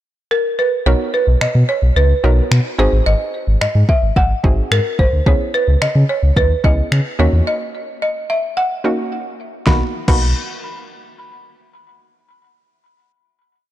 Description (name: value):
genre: dance-pop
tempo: 109 BPM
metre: 4/4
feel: straight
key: B major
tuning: A4 = 440 Hz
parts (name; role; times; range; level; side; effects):
- folk marimba with hard mallets; melody; 0.3-10.3 s; A#4 to B5; -19 LUFS; right 1 dB; tape echo
- hollow square pluck; accompaniment; 0.9-10.3 s; A#3 to A#4; -23 LUFS; right 1 dB; chorus, sidechain pumping
- sub bass with octave; bass; 0.9-10.3 s; G#1 to C#3; -14 LUFS; equal; sidechain pumping
- smooth R&B drum kit; drums; 1.4-10.2 s; crash cymbal, finger snaps, kick drum, snare drum; -18 LUFS; equal; soft clipping on snare
room: little or no reverb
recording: blown-out, overdriven recording, overdrive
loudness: -13 LUFS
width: side -13 dB against mid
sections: 0.0-0.9 pickup bar; 0.9-9.7 verse; 9.7-11.9 final chord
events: break 7.5-9.7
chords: 0.0 N.C.; 0.9 Bmaj7; 2.8 G#7; 5.3 C#m7; 7.2 D#m7; 9.7 Bmaj7